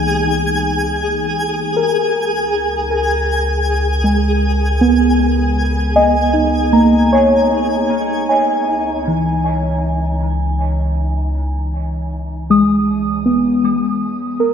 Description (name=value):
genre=ambient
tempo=79 BPM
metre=4/4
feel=straight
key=C# dorian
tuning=A4 = 437 Hz
part: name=muted felt-like synth keys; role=arpeggios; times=0.0-14.5 s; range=E3 to D#6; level=-15 LUFS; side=equal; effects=chorus, tape echo, shimmer reverb
part: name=deep rumbling drone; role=bass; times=0.0-14.5 s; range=C#2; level=-20 LUFS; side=equal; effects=built-in reverb
part: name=twinkling granular texture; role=texture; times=0.0-7.9 s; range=G#4 to G#5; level=-20 LUFS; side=left 1 dB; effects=built-in reverb, shimmer reverb
room=wet concert hall reverb, RT60 2.2 s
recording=none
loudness=-14 LUFS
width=side -8 dB against mid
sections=0.0-7.9 A section; 7.9-14.5 B section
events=none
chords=0.0 C#m9; 1.8 G#m/C#; 7.9 C#m69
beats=0.25 1.02 | 1.77 2.53 3.29 4.05 | 4.81 5.57 6.34 7.12 | 7.91 8.68 9.46 10.22 | 10.98 11.75 12.51 13.27 | 14.03